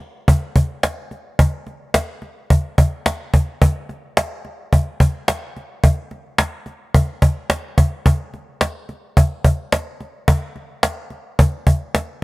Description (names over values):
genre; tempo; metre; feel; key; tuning
dream pop; 108 BPM; 4/4; straight; none; none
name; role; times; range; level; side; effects
cajon; drums; 0.3-12.1 s; none; -14 LUFS; equal; none
room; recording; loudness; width
little or no reverb; dry, gritty hardware recording; -17 LUFS; side -22 dB against mid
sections
0.0-12.2 A section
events
none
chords
none